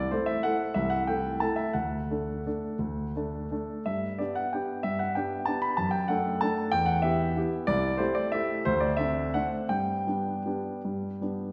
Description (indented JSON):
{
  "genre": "classical, piano waltz",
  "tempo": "151-204 BPM",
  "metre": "3/4",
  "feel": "rubato",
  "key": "G major",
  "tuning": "A4 = 440 Hz",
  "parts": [
    { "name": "warm grand piano", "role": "solo", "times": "0.0-11.5 s", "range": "C2 to B5", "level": "-29 LUFS", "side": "equal", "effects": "none" }
  ],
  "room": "wet scoring stage reverb, RT60 1.7 s",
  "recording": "recorded in a church or concert hall",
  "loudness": "-29 LUFS",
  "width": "mono",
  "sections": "0.0-11.5 A section",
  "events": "none",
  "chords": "0.0 Am7/C; 1.7 D; 3.9 G; 5.8 D/F#; 6.7 Em; 7.7 Am7/C; 8.7 D7; 9.7 G"
}